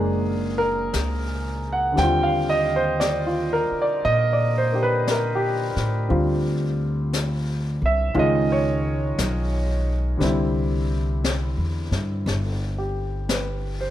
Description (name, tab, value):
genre	jazz ballad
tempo	58 BPM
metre	4/4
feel	swing 67% on 8ths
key	unclear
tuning	A4 = 440 Hz
part	warm grand piano	accompaniment	0.0-13.9 s	Bb2 to G5	-22 LUFS	right 1 dB	none
part	upright bass	bass	0.0-13.9 s	F#1 to Bb2	-25 LUFS	equal	none
part	jazz brush drum kit	drums	0.9-13.9 s	brushed snare drum, hi-hat, snare drum	-31 LUFS	left 3 dB	none
room	moderate large studio reverb, RT60 1.3 s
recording	none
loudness	-20 LUFS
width	side -12 dB against mid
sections	0.0-13.9 A section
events	none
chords	0.0 Bb7alt; 2.0 Ebmaj9; 6.1 Dm7; 8.2 Db7; 10.2 C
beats	0.93 | 1.97 3.01 4.04 5.08 | 6.10 7.13 8.16 9.18 | 10.21 11.23 12.26 13.29